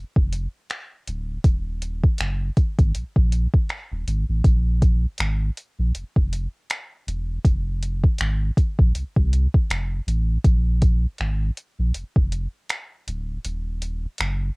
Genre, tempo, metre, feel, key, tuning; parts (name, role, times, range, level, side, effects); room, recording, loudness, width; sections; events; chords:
contemporary R&B; 80 BPM; 4/4; swing 58% on 16ths; A4 = 440 Hz
warm sub bass; bass; 0.0-14.5 s; D1 to C2; -23 LUFS; equal
smooth R&B drum kit; drums; 0.2-14.4 s; finger snaps, hi-hat, kick drum; -19 LUFS; equal; cassette tape
little or no reverb; home recording on cassette; -20 LUFS; side -36 dB against mid
0.0-14.6 A section
kick muted 13.4-14.6